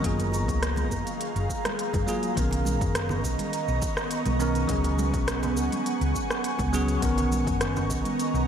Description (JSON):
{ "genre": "sunset chillout", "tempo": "103 BPM", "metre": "4/4", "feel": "straight", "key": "B lydian", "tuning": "A4 = 442 Hz", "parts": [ { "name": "bell-like tine electric piano", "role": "accompaniment", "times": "0.0-8.5 s", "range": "D#3 to A#4", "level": "-30 LUFS", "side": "equal", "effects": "auto-pan, analog delay" }, { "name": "ethereal airy pad", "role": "sustained chords", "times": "0.0-8.5 s", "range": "B3 to C#6", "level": "-30 LUFS", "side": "right 2 dB", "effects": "ensemble chorus, built-in reverb" }, { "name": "hollow-body short-scale fingered electric bass", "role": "bass", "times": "0.0-8.4 s", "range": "F#1 to C#2", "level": "-28 LUFS", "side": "left 1 dB", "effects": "none" }, { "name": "electronic kick drum", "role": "drums", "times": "0.0-8.0 s", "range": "none", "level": "-33 LUFS", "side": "left 1 dB", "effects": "overdrive" }, { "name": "smooth R&B drum kit", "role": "drums", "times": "0.0-8.5 s", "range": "cabasa, hi-hat, rim click", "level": "-33 LUFS", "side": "right 1 dB", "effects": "none" }, { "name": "congas and bongos", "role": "percussion", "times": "0.2-8.2 s", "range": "none", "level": "-38 LUFS", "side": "right 2 dB", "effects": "none" } ], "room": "moderate huge ambient reverb, RT60 7.6 s", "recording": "dreamy mix soaked in reverb", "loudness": "-24 LUFS", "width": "side -8 dB against mid", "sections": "0.0-2.4 A section; 2.4-8.5 B section", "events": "filter sweep on tine electric piano 0.0-2.4", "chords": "0.0 F#maj9; 2.4 Bmaj9; 4.7 C#7sus4; 7.0 Bmaj9", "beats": "| 0.04 0.62 1.20 1.78 | 2.37 2.95 3.53 4.12 | 4.70 5.28 5.86 6.45 | 7.03 7.61 8.19" }